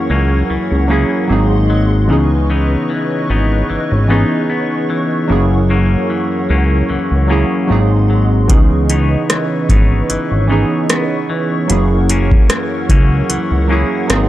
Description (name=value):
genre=contemporary R&B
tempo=75 BPM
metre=4/4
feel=swing 54% on 16ths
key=C# dorian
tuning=A4 = 439 Hz
part: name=warm analog keys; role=accompaniment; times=0.0-14.3 s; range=E3 to G#4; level=-17 LUFS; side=right 1 dB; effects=chorus
part: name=hollow soft pad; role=sustained chords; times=0.0-14.3 s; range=G#4 to C#6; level=-24 LUFS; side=equal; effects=ensemble chorus, sidechain pumping
part: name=clean electric guitar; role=arpeggios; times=0.0-14.3 s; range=F#2 to D#4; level=-21 LUFS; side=left 3 dB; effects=none
part: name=fat analog bass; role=bass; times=0.1-14.3 s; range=F#1 to C#2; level=-14 LUFS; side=equal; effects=none
part: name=booming analog drum machine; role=drums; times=8.5-14.3 s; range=hi-hat, kick drum, rim click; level=-12 LUFS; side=equal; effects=overdrive
room=little or no reverb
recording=dry, gritty hardware recording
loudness=-12 LUFS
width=side -14 dB against mid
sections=0.0-14.3 A section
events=none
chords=0.0 F#7; 1.3 G#7; 2.1 C#m9; 5.3 F#7; 7.7 G#7; 8.5 C#m9; 11.7 F#7